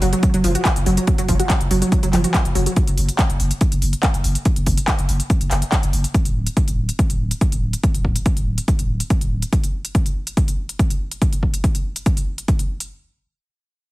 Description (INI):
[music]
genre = driving peak-time techno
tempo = 142 BPM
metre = 4/4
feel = straight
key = unclear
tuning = A4 = 441 Hz
[part]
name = wide unison pluck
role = riff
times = 0.0-2.7 s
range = E#3 to F#4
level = -20 LUFS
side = right 1 dB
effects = tube saturation, sidechain pumping, dub echo
[part]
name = saturated sub bass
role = bass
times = 0.0-9.4 s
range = D1 to F#1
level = -22 LUFS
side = equal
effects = overdrive, sidechain pumping, low-pass filter
[part]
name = techno drum kit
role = drums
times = 0.0-12.9 s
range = handclaps, hi-hat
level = -25 LUFS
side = equal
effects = overdrive, sidechain pumping on hats, studio reverb, sidechain pumping on perc
[part]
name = electronic kick drum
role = drums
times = 0.2-12.6 s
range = none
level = -18 LUFS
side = equal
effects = overdrive, studio reverb
[sound]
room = light reverb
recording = heavily compressed radio sound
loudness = -17 LUFS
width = side -18 dB against mid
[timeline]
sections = 0.0-12.9 A section; 12.9-13.9 B section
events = filter sweep on synth arpeggio sound 0.0-2.8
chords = none